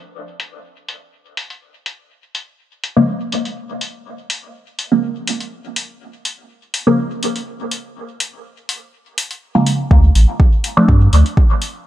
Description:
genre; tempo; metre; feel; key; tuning
dub techno; 123 BPM; 4/4; swing 53% on 16ths; unclear; A4 = 441 Hz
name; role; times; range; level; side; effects
electronic hi-hat; drums; 0.4-11.7 s; none; -22 LUFS; left 2 dB; none
filtered dub chord stab; stabs; 3.0-10.9 s; Db3 to D4; -17 LUFS; equal; phaser, sidechain pumping, dub echo
warm sub bass; bass; 9.9-11.2 s; A1 to G2; -10 LUFS; equal; sidechain pumping
electronic kick drum; drums; 9.9-11.5 s; none; -12 LUFS; equal; overdrive
room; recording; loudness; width
light reverb, digital ambience; low-pass filter; -14 LUFS; side -14 dB against mid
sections
0.0-9.9 A section; 9.9-11.9 B section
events
filter sweep 0.0-9.9; filter sweep on synth stab 9.9-11.9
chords
0.0 N.C.; 2.1 Bbm7; 9.9 Dm7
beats
| 0.15 0.64 1.13 1.62 | 2.10 2.59 3.08 3.57 | 4.06 4.54 5.03 5.52 | 6.01 6.50 6.98 7.47 | 7.96 8.45 8.93 9.42 | 9.91 10.40 10.88 11.37

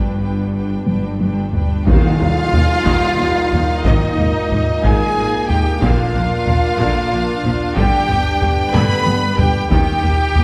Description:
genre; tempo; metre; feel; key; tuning
cinematic, epic orchestral film score; 61 BPM (dotted quarters); 6/8; straight; Eb major; A4 = 444 Hz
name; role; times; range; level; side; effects
warm symphonic violin section; melody; 0.0-10.4 s; Eb5 to B5; -26 LUFS; equal; none
warm symphonic violin section; second line; 0.0-10.4 s; Eb4 to B4; -30 LUFS; equal; none
rich symphonic viola section; accompaniment; 0.0-10.4 s; D3 to Eb4; -28 LUFS; equal; none
mellow French horn section; sustained chords; 0.0-10.4 s; Bb3 to Eb4; -30 LUFS; equal; none
mellow trombone section; sustained chords; 0.0-10.4 s; G2 to Bb3; -31 LUFS; equal; none
rich symphonic cello section; bass; 0.0-10.4 s; Eb2 to Bb2; -26 LUFS; equal; none
rich symphonic double bass section; bass; 0.0-10.4 s; G1 to Eb2; -26 LUFS; equal; none
taiko ensemble; drums; 0.9-10.4 s; none; -21 LUFS; equal; none
bright flute section; second line; 1.9-10.4 s; Eb5 to B5; -27 LUFS; equal; none
warm trumpet; stabs; 1.9-10.4 s; Eb4 to B4; -26 LUFS; equal; none
tam-tam; percussion; 1.9-4.5 s; none; -33 LUFS; equal; none
timpani; percussion; 1.9-2.8, 5.8-10.4 s; Bb2 to Eb3; -26 LUFS; equal; none
room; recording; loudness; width
wet scoring stage reverb, RT60 1.7 s; heard from further back in the room; -16 LUFS; mono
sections
0.0-1.9 A section; 1.9-10.4 B section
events
drum fill 0.9-1.9, 8.7-9.7; band accent 1.9-2.5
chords
0.0 G; 1.9 Eb; 3.8 Absus2; 5.8 Bb; 7.8 G; 9.7 Eb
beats
0.87 | 1.86 2.85 | 3.84 4.83 | 5.81 6.79 | 7.76 8.73 | 9.70

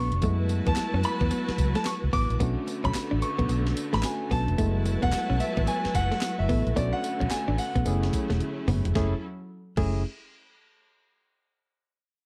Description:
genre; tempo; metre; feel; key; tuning
R&B, new jack swing; 110 BPM; 4/4; swing 63% on 16ths; F# minor; A4 = 435 Hz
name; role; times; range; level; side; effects
clear concert grand piano; melody; 0.0-8.4 s; D5 to D6; -34 LUFS; equal; slapback echo
barky tine electric piano; accompaniment; 0.0-10.0 s; G#3 to A4; -36 LUFS; equal; none
rich studio string section; sustained chords; 0.0-9.2 s; D3 to A5; -36 LUFS; equal; none
direct-recorded clean electric guitar; riff; 0.0-9.9 s; A3 to D4; -33 LUFS; equal; lush chorus
vintage muted fingered electric bass; bass; 0.0-10.0 s; E1 to F#2; -29 LUFS; equal; none
clean 12-bit digital drum machine; drums; 0.1-9.9 s; crash cymbal, handclaps, hi-hat, kick drum, snare drum, tambourine, toms; -34 LUFS; equal; none
room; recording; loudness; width
digital ambience; dry, close 1970s-style studio recording; -27 LUFS; mono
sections
0.0-8.9 A section; 8.9-11.1 B section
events
drum fill 8.4-8.9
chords
0.2 F#m11; 2.4 Bm9; 4.6 F#m11; 6.8 Bm9; 7.9 F#m7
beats
| 0.22 0.77 1.31 1.86 | 2.40 2.95 3.50 4.04 | 4.59 5.13 5.68 6.22 | 6.77 7.31 7.86 8.40 | 8.95 9.50

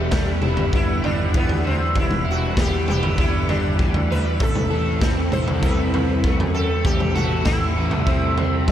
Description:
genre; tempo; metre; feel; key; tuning
psychedelic rock; 98 BPM; 4/4; straight; unclear; A4 = 440 Hz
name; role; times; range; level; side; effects
sitar; melody; 0.0-8.7 s; B3 to C5; -26 LUFS; equal; tape echo
bright tonewheel organ; sustained chords; 0.0-8.7 s; G3 to B5; -31 LUFS; right 2 dB; slow rotary speaker, chorus vibrato
crunchy overdriven guitar; riff; 0.0-8.7 s; E2 to A4; -25 LUFS; left 1 dB; flanger
fuzz picked electric bass; bass; 0.0-8.7 s; E1 to F#2; -26 LUFS; equal; overdrive
raw garage drum kit; drums; 0.1-8.7 s; kick drum, snare drum, toms; -21 LUFS; equal; none
room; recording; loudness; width
moderate huge ambient reverb, RT60 5.0 s; dreamy mix soaked in reverb; -18 LUFS; side -10 dB against mid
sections
0.0-8.7 A section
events
none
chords
0.0 Em; 4.4 Amadd9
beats
0.13 0.74 1.35 | 1.96 2.57 3.18 3.79 | 4.40 5.01 5.63 6.24 | 6.85 7.46 8.07 8.68

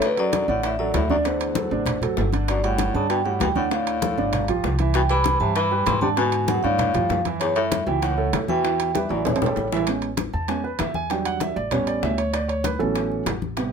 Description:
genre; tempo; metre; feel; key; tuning
Afro-Cuban jazz; 195 BPM; 4/4; straight; D major, A major from 9.9 s; A4 = 442 Hz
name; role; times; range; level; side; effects
vibraphone with soft mallets; melody; 0.0-9.7 s; B4 to C6; -24 LUFS; right 1 dB; none
mellow baritone saxophone; second line; 0.0-9.7 s; D2 to E3; -27 LUFS; left 6 dB; none
bongos; percussion; 0.0-13.7 s; none; -31 LUFS; left 10 dB; none
congas; percussion; 0.0-13.7 s; none; -30 LUFS; left 3 dB; none
timbales; percussion; 0.0-13.7 s; none; -31 LUFS; right 7 dB; none
warm grand piano; accompaniment; 0.2-13.7 s; C3 to A5; -26 LUFS; right 4 dB; none
upright bass; bass; 0.5-13.7 s; G1 to G#2; -27 LUFS; equal; none
room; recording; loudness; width
light reverb; minimal, uncompressed stereo recording; -20 LUFS; side -6 dB against mid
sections
0.0-9.9 A section; 9.9-13.7 B section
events
drum fill 9.3-9.9; grand piano solo 9.9-13.7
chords
0.0 D; 1.2 D9; 2.5 Gsus2; 3.7 Dm; 4.3 Gsus2; 4.9 Cmaj7; 6.2 G#m7b5; 6.8 Gsus2; 7.4 F#m7; 8.6 Em; 9.3 A7; 9.9 Amaj9; 11.1 Em7; 11.7 A9; 12.3 Dmaj13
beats
| 0.02 0.33 0.64 0.94 | 1.25 1.56 1.87 2.17 | 2.48 2.79 3.10 3.40 | 3.71 4.02 4.33 4.64 | 4.95 5.25 5.56 5.87 | 6.18 6.48 6.79 7.10 | 7.41 7.71 8.02 8.33 | 8.64 8.95 9.26 9.56 | 9.87 10.18 10.49 10.80 | 11.11 11.41 11.72 12.03 | 12.34 12.65 12.95 13.26 | 13.57

